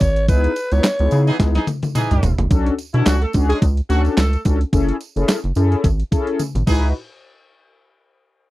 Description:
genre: early-eighties boogie funk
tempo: 108 BPM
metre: 4/4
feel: swing 56% on 16ths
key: unclear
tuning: A4 = 445 Hz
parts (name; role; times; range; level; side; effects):
- growling alto saxophone; melody; 0.0-1.3 s; B4 to C#5; -21 LUFS; equal; slapback echo
- rubbery square bass; bass; 0.0-6.9 s; E1 to C#3; -17 LUFS; equal; none
- clean 12-bit digital drum machine; drums; 0.0-6.8 s; crash cymbal, handclaps, hi-hat, kick drum, snare drum, toms; -19 LUFS; equal; none
- tambourine; percussion; 0.0-6.9 s; none; -38 LUFS; right 7 dB; none
- mellow synth brass; accompaniment; 0.3-6.9 s; B3 to B4; -22 LUFS; left 3 dB; chorus
- warm horn section; second line; 1.3-6.9 s; E3 to A4; -23 LUFS; right 1 dB; none
room: little or no reverb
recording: dry, close 1970s-style studio recording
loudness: -16 LUFS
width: side -17 dB against mid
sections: 0.0-2.5 A section; 2.5-7.0 B section; 7.0-8.5 C section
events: drum fill 1.4-2.5, 6.4-7.0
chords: 0.3 C#m9; 2.5 Bm9; 4.7 F#m9; 6.7 C#m11; 7.0 N.C.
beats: | 0.28 0.84 1.40 1.95 | 2.51 3.06 3.62 4.17 | 4.73 5.28 5.84 6.39

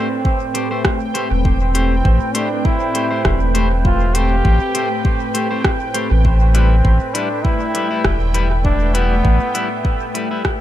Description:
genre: ambient dub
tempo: 100 BPM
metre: 4/4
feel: swing 54% on 16ths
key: A minor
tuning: A4 = 441 Hz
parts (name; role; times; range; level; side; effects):
- brilliant trombone; melody; 0.0-10.1 s; B3 to G4; -23 LUFS; equal; dub echo
- warm analog pad; sustained chords; 0.0-10.6 s; A2 to G5; -23 LUFS; equal; chorus
- semi-hollow electric guitar; stabs; 0.0-10.4 s; G3 to C5; -24 LUFS; left 4 dB; dub echo
- bubbling stepped-filter texture; texture; 0.0-10.6 s; G5; -29 LUFS; right 5 dB; chorus, built-in reverb
- electronic kick drum; drums; 0.2-10.6 s; none; -18 LUFS; equal; none
- organic electronic drum kit; drums; 0.5-10.6 s; hi-hat, rim click; -22 LUFS; equal; dub echo
- warm sub bass; bass; 1.3-9.4 s; E1 to A1; -15 LUFS; equal; tube saturation
room: digital ambience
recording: echo-heavy mix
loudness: -14 LUFS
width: side -12 dB against mid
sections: 0.0-10.6 A section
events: fade-out 9.4-10.6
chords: 0.0 Am7; 6.2 Em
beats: 0.25 0.85 | 1.45 2.05 2.65 3.25 | 3.85 4.45 5.05 5.65 | 6.25 6.85 7.45 8.05 | 8.65 9.25 9.85 10.45

